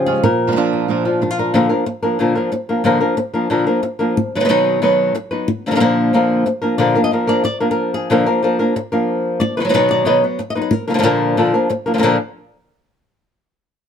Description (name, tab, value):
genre	flamenco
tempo	183 BPM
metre	4/4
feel	straight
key	unclear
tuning	A4 = 440 Hz
part	flamenco guitar	melody	0.0-12.2 s	Bb2 to Eb5	-14 LUFS	left 1 dB	none
part	flamenco guitar	stabs	0.1-1.6 s	Bb2 to F4	-20 LUFS	right 7 dB	none
room	light reverb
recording	close, detailed microphones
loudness	-14 LUFS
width	side -8 dB against mid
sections	0.0-1.6 A section; 1.6-6.8 B section; 6.8-12.0 B section; 12.0-13.3 C section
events	none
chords	0.2 Bb; 4.2 B; 5.5 Bb; 9.4 B; 10.7 Bb; 12.0 N.C.